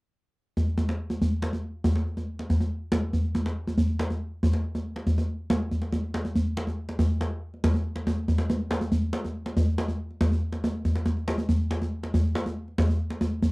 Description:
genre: west african traditional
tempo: 93 BPM (dotted quarters)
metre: 12/8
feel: straight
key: none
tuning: none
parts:
  - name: djembe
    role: percussion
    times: 0.6-13.5 s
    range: none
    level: -24 LUFS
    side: equal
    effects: none
room: light reverb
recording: dry, close 1970s-style studio recording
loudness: -25 LUFS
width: side -24 dB against mid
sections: 0.6-5.7 A section; 5.7-13.5 B section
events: none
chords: none

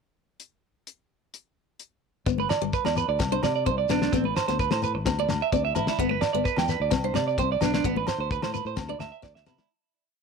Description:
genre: highlife guitar band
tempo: 129 BPM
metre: 4/4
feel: straight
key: G major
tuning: A4 = 441 Hz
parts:
  - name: damped 70s drum kit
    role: drums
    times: 0.4-9.7 s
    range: hi-hat, kick drum, snare drum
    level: -29 LUFS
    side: left 2 dB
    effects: none
  - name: picked steel-string acoustic guitar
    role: accompaniment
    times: 2.3-9.6 s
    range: G3 to D4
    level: -30 LUFS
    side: left 16 dB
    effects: none
  - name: electric guitar at the edge of break-up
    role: arpeggios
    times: 2.3-9.7 s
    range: B3 to G5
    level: -27 LUFS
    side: right 11 dB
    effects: tape echo
  - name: fingered electric bass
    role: bass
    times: 2.3-9.6 s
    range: G1 to C3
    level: -31 LUFS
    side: left 2 dB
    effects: none
  - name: shekere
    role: percussion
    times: 2.3-9.7 s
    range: none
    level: -37 LUFS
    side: left 7 dB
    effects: none
  - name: congas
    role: percussion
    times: 2.4-9.7 s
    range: none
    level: -33 LUFS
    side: left 17 dB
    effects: none
  - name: agogo bells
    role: percussion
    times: 2.5-9.6 s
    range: none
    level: -35 LUFS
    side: left 2 dB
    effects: none
room: light reverb, small room ambience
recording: 1960s-style stereo with parts hard left and right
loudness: -23 LUFS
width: side -5 dB against mid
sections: 0.4-2.3 pickup bar; 2.3-9.7 groove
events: fade-out 7.8-9.7; drum fill 9.2-9.7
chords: 0.4 N.C.; 2.3 G; 3.2 Csus2; 4.1 Amadd9; 5.1 Dsus2; 6.0 G; 6.9 Csus2; 7.8 Amadd9; 8.8 Dsus2

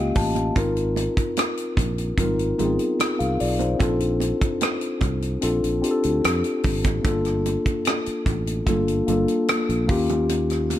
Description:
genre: lush 1970s-style soul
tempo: 74 BPM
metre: 4/4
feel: straight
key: G minor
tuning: A4 = 440 Hz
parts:
  - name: mellow tine electric piano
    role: accompaniment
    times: 0.0-10.8 s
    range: Bb3 to A5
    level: -23 LUFS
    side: left 2 dB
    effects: none
  - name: fingered electric bass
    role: bass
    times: 0.0-10.7 s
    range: G1 to F2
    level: -26 LUFS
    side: right 1 dB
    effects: none
  - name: tight funk drum kit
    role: drums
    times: 0.2-10.8 s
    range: hi-hat, kick drum, rim click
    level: -25 LUFS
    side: right 1 dB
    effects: none
  - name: congas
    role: percussion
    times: 0.4-10.8 s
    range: none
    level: -33 LUFS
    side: right 10 dB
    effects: none
room: light reverb, small room ambience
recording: none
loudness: -20 LUFS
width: side -12 dB against mid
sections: 0.0-10.8 A section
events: tine electric piano fill 0.0-0.6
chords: 0.0 Eb9; 0.6 Ab6; 3.8 Bbmaj7; 7.1 Gm9; 9.9 Eb9

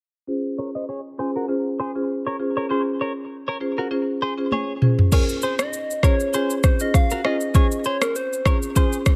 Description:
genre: afrobeats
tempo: 99 BPM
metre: 4/4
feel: swing 55% on 16ths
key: Db major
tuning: A4 = 436 Hz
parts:
  - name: marimba with medium mallets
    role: accompaniment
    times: 0.3-9.0 s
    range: Db4 to C5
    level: -28 LUFS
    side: equal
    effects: low-pass filter
  - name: direct-recorded clean electric guitar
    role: riff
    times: 0.6-9.0 s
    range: F4 to Eb5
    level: -31 LUFS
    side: equal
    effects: subtle chorus, low-pass filter, digital delay
  - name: afro-pop drum kit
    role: drums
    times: 4.5-9.2 s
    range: crash cymbal, kick drum, rim click, shaker, toms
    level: -20 LUFS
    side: equal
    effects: none
  - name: soft struck synth lead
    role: melody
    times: 5.1-9.2 s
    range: Bb4 to F5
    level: -28 LUFS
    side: equal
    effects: chorus
room: digital ambience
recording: none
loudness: -22 LUFS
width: mono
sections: 0.3-5.1 A section; 5.1-9.2 B section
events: filter sweep 0.3-5.1; drum fill 4.5-5.1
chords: 0.3 Dbmaj7

